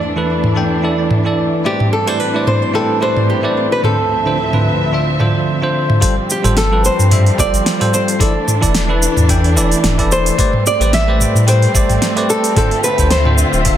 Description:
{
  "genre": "sunset chillout",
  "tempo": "110 BPM",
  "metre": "4/4",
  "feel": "swing 55% on 16ths",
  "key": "A minor",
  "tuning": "A4 = 439 Hz",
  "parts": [
    { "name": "muted studio string section", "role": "sustained chords", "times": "0.0-13.8 s", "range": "D2 to E5", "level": "-21 LUFS", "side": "right 1 dB", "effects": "shimmer reverb" },
    { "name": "bell-like tine electric piano", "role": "accompaniment", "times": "0.2-13.8 s", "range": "D3 to G5", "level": "-18 LUFS", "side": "moving between left 4 dB and right 3 dB", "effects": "auto-pan, digital delay, shimmer reverb" },
    { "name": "smooth R&B drum kit", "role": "drums", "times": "0.4-13.8 s", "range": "hi-hat, shaker, snare drum, toms", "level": "-18 LUFS", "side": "equal", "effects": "overdrive" },
    { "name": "nylon-string guitar", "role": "melody", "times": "1.7-13.6 s", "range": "G4 to E5", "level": "-18 LUFS", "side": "equal", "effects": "digital delay, shimmer reverb" },
    { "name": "electronic kick drum", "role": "drums", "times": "6.0-13.8 s", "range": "none", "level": "-16 LUFS", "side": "equal", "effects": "none" },
    { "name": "warm sub bass", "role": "bass", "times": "6.4-13.8 s", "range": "D1 to A2", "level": "-14 LUFS", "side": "equal", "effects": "none" }
  ],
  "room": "moderate plate reverb, RT60 1.5 s",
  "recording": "dense, heavily limited modern master",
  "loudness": "-12 LUFS",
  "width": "side -10 dB against mid",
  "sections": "0.0-6.0 A section; 6.0-13.8 B section",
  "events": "filter sweep on drum 0.0-6.0",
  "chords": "0.0 E7sus4; 1.7 Am11; 3.8 Dm7; 6.0 G9sus4; 8.2 E7sus4; 10.4 Am11; 12.6 Dm7"
}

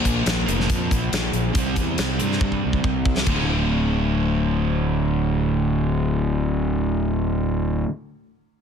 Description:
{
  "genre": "hard rock",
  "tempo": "139 BPM",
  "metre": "4/4",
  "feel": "straight",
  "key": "D minor",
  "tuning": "A4 = 442 Hz",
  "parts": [
    { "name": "overdriven semi-hollow guitar", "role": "riff", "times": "0.0-7.9 s", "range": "D2 to C4", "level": "-23 LUFS", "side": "equal", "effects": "none" },
    { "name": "fuzz fingered electric bass", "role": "bass", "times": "0.0-7.8 s", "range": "D1 to G2", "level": "-23 LUFS", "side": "equal", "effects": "overdrive" },
    { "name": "big rock drum kit", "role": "drums", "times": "0.1-3.4 s", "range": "crash cymbal, hi-hat, kick drum, snare drum", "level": "-24 LUFS", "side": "equal", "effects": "none" }
  ],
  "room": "light reverb, small room ambience",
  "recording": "dense, heavily limited modern master",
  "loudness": "-19 LUFS",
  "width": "side -7 dB against mid",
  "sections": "0.0-3.3 A section; 3.3-6.7 B section",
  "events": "drum fill 2.4-3.3",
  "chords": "0.0 Bb5; 1.5 C5; 3.3 D5"
}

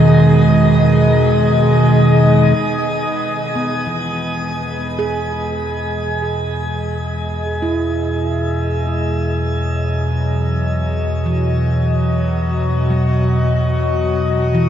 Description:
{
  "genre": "ambient",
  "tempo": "free time",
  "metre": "none",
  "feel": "none",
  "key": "E major",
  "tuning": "A4 = 445 Hz",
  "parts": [
    { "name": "warbly tape-like pad", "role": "sustained chords", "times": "0.0-14.7 s", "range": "E2 to D#5", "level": "-15 LUFS", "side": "equal", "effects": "chorus, built-in reverb" },
    { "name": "handpan", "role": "arpeggios", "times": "0.0-14.7 s", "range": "D#3 to D#5", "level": "-24 LUFS", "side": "right 1 dB", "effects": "diffuse ambient delay" },
    { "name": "warm sub bass", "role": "bass", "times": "2.6-14.7 s", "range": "E2", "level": "-23 LUFS", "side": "equal", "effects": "none" }
  ],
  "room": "wet shimmer reverb, RT60 8.4 s",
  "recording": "none",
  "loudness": "-14 LUFS",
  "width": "side -9 dB against mid",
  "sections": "0.0-2.6 A section; 2.6-14.7 B section",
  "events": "fade-in on ambient pad 2.6-14.7; fade-in on handpan 2.6-14.7; fade-in on sub bass 2.6-14.7",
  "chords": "0.0 G#m/E; 2.6 Emaj7"
}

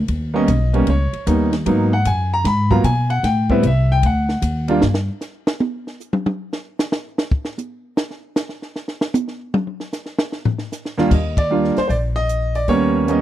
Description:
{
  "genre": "jazz piano trio",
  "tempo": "152 BPM",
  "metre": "4/4",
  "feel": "swing 66% on 8ths",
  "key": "unclear",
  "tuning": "A4 = 440 Hz",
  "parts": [
    { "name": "upright bass", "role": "bass", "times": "0.0-5.1, 11.1-13.2 s", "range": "Bb1 to Cb3", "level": "-18 LUFS", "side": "left 1 dB", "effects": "none" },
    { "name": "compact cocktail drum kit", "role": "drums", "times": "0.1-13.2 s", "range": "crash cymbal, hi-hat, kick drum, ride cymbal, snare drum, toms", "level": "-21 LUFS", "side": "equal", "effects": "none" },
    { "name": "clear concert grand piano", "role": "melody", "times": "0.3-4.8, 11.0-13.2 s", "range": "Eb2 to Cb6", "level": "-18 LUFS", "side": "right 1 dB", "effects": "none" }
  ],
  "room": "small room ambience",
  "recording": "dry, close 1970s-style studio recording",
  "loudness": "-17 LUFS",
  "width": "side -13 dB against mid",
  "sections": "0.0-11.1 A section; 11.1-13.2 B section",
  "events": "grand piano solo 0.0-11.1; drum solo 4.8-11.1; band accent 11.3",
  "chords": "0.1 Eb7b13; 1.7 Abm7; 3.2 Am9; 4.0 D; 4.8 N.C.; 11.1 Ebmaj7(no3); 12.7 Eb7b13"
}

